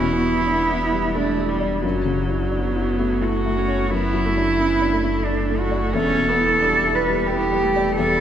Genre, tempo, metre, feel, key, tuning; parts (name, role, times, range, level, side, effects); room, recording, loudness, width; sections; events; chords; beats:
neoclassical piano and strings; 88 BPM; 3/4; rubato; A4 = 440 Hz
dark cello; second line; 0.0-8.2 s; B3 to B4; -20 LUFS; right 2 dB
felt-muted upright piano; accompaniment; 0.0-8.2 s; E2 to D5; -24 LUFS; left 2 dB
rich viola; accompaniment; 0.0-8.2 s; F#3 to C#4; -27 LUFS; right 1 dB
punchy sub bass; bass; 0.0-8.2 s; E1 to F#1; -27 LUFS; left 1 dB
wet cathedral reverb, RT60 5.4 s; recorded in a church or concert hall; -18 LUFS; side -9 dB against mid
0.0-8.2 A section
0.0 Em7; 1.8 F#m7; 3.9 D/F#; 5.9 Em7
0.47 1.15 | 1.83 2.52 3.22 | 3.91 4.59 5.26 | 5.94 6.62 7.30 | 7.97